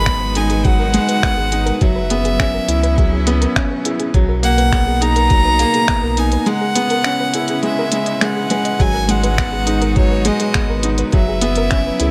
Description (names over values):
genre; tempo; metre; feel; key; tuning
piano and strings electronica; 103 BPM; 4/4; straight; G# minor; A4 = 440 Hz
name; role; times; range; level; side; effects
warm violin; melody; 0.0-12.1 s; C#5 to B5; -22 LUFS; equal; none
rich string quartet; sustained chords; 0.0-12.1 s; B2 to B4; -28 LUFS; equal; none
clear grand piano; riff; 0.0-12.1 s; F#3 to E4; -22 LUFS; equal; none
warm sub bass; bass; 0.0-12.1 s; F#1 to C#2; -21 LUFS; equal; sidechain pumping
electronic kick drum; drums; 0.1-11.8 s; none; -19 LUFS; equal; none
minimal click drum kit; drums; 0.1-12.1 s; finger snaps, hi-hat; -24 LUFS; equal; none
soft round pluck; arpeggios; 0.2-12.1 s; G#4 to D#5; -30 LUFS; equal; chorus, sidechain pumping, digital delay
room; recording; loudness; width
light reverb, small room ambience; none; -16 LUFS; mono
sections
0.0-12.1 A section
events
break 6.5-8.8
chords
0.0 G#m7; 1.8 F#7sus4; 4.1 Bmaj7; 6.5 C#m7; 8.8 G#m7; 11.1 F#7sus4